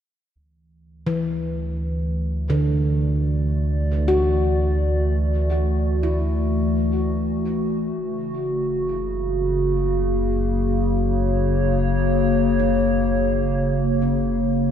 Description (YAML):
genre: ambient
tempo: 63 BPM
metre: 4/4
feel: straight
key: unclear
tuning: A4 = 440 Hz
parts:
  - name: warbly tape-like pad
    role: sustained chords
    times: 0.4-14.7 s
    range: C#3 to D5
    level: -22 LUFS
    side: left 1 dB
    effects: chorus, built-in reverb
  - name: round analog bass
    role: bass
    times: 0.4-14.7 s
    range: F#1 to D2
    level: -24 LUFS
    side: equal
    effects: none
  - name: handpan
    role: arpeggios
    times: 1.1-14.7 s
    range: C#3 to F#4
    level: -25 LUFS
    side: equal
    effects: diffuse ambient delay
room: moderate lush hall reverb, RT60 3.2 s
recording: dark, warm production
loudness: -19 LUFS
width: side -8 dB against mid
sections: 0.4-14.7 A section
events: fade-in on ambient pad 0.4-14.7; fade-out on handpan 0.4-14.7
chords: 0.4 Dadd9; 8.0 F#